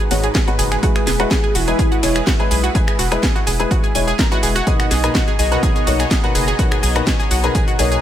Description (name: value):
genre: progressive house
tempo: 125 BPM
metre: 4/4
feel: straight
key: unclear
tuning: A4 = 440 Hz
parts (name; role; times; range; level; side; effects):
- lush unison pad; sustained chords; 0.0-8.0 s; G#3 to A#5; -27 LUFS; right 1 dB; chorus, phaser, sidechain pumping
- analog pluck; arpeggios; 0.0-8.0 s; F#4 to G#5; -22 LUFS; right 3 dB; chorus, sidechain pumping, digital delay
- dark grand piano; stabs; 0.0-7.9 s; G#2 to C#5; -23 LUFS; left 4 dB; sidechain pumping, digital delay
- house drum kit; drums; 0.0-8.0 s; finger snaps, hi-hat, shaker, snare drum; -23 LUFS; equal; studio reverb
- round analog bass; bass; 0.1-8.0 s; E1 to B1; -20 LUFS; equal; sidechain pumping
- dusty soul sampler-style drum kit; drums; 0.1-7.9 s; hi-hat, snare drum; -33 LUFS; left 1 dB; none
- electronic kick drum; drums; 0.3-7.7 s; none; -18 LUFS; equal; studio reverb
- soft octave-layered synth lead; melody; 0.8-6.0 s; E4 to D#5; -24 LUFS; equal; chorus, phaser, sidechain pumping, digital delay
room: digital ambience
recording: none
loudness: -14 LUFS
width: side -11 dB against mid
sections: 0.0-8.0 A section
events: none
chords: 0.0 G#m7; 0.8 E; 4.7 Bmaj7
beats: 0.35 | 0.83 1.31 1.79 2.27 | 2.75 3.23 3.71 4.19 | 4.67 5.15 5.63 6.11 | 6.59 7.07 7.55